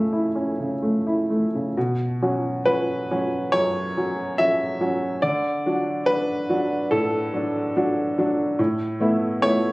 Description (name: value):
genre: neoclassical minimalist piano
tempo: 63-73 BPM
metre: 4/4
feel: rubato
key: B minor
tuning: A4 = 440 Hz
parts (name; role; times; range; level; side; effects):
- warm upright piano; solo; 0.0-9.7 s; F#2 to E5; -20 LUFS; equal; none
room: light reverb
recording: recorded on a phone in the room, club reverb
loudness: -20 LUFS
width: side -22 dB against mid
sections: 0.0-1.8 A section; 1.8-9.7 B section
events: none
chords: 0.0 F#m7; 1.8 Bsus2; 5.2 D; 8.6 Asus2